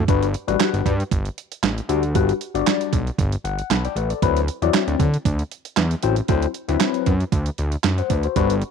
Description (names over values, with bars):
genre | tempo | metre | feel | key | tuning
early-eighties boogie funk | 116 BPM | 4/4 | straight | G major | A4 = 440 Hz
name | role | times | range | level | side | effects
fat analog bass | bass | 0.0-8.6 s | G1 to D3 | -22 LUFS | equal | transformer saturation
barky tine electric piano | accompaniment | 0.1-8.5 s | F#3 to B5 | -22 LUFS | left 14 dB | overdrive, phaser
crisp 8-bit digital drum machine | drums | 0.1-8.7 s | handclaps, hi-hat, kick drum, snare drum | -22 LUFS | right 6 dB | none
room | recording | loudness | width
light reverb, digital ambience | 1960s-style stereo with parts hard left and right | -19 LUFS | side -6 dB against mid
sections
0.1-8.7 A section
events
tine electric piano fill 3.2-4.2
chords
0.1 Gmaj7; 4.2 D13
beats
| 0.09 0.60 1.12 1.64 | 2.15 2.67 3.19 3.71 | 4.22 4.74 5.26 5.78 | 6.29 6.81 7.33 7.84 | 8.36